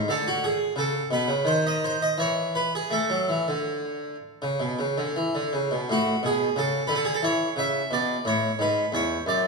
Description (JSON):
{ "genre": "classical, baroque-style suite movement for harpsichord", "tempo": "78-92 BPM", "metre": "4/4", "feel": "rubato", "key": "A major", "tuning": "A4 = 441 Hz", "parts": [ { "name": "harpsichord", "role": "solo", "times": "0.0-9.5 s", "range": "E2 to E5", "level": "-23 LUFS", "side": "right 1 dB", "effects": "none" } ], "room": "wet recital hall reverb, RT60 1.8 s", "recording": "studio ambience", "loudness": "-23 LUFS", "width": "side -3 dB against mid", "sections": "0.0-5.9 A section; 5.9-9.5 B section", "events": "none", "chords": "0.1 Bm13; 1.4 N.C.; 2.9 A; 8.6 E", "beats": "| 0.09 0.76 1.45 2.15 | 2.89 3.65 4.41 5.15 | 5.88 6.56 7.22 7.90 | 8.59 9.26" }